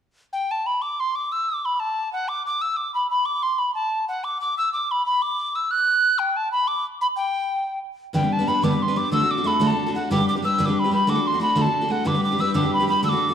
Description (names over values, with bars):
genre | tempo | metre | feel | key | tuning
celtic folk | 123 BPM (dotted quarters) | 6/8 | straight | G major | A4 = 440 Hz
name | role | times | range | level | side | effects
tin whistle | melody | 0.3-13.3 s | F#5 to F#6 | -21 LUFS | equal | none
picked steel-string acoustic guitar | accompaniment | 8.1-13.3 s | G2 to B4 | -21 LUFS | equal | none
room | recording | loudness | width
wet recital hall reverb, RT60 1.4 s | dark, warm production | -20 LUFS | side -8 dB against mid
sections
0.3-8.1 A section; 8.1-13.3 A section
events
none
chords
0.3 N.C.; 8.1 G; 9.1 D; 10.1 G; 11.1 D; 12.1 G